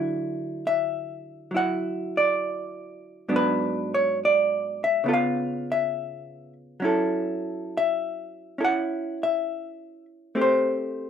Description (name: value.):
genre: jazz ballad.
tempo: 68 BPM.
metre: 4/4.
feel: swing 67% on 8ths.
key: D major.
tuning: A4 = 442 Hz.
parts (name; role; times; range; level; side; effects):
vintage hollow-body jazz guitar; solo; 0.0-11.1 s; G#2 to F#5; -23 LUFS; equal; none.
room: light reverb.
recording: rough home demo mix.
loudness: -23 LUFS.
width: side -8 dB against mid.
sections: 0.0-11.1 A section.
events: none.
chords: 0.0 Dadd9; 3.3 G#m7b5; 5.1 C#7#9; 6.8 F#m7; 10.4 Am7.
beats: 0.63 1.52 2.40 | 3.29 4.17 5.06 5.94 | 6.83 7.71 8.60 9.48 | 10.36.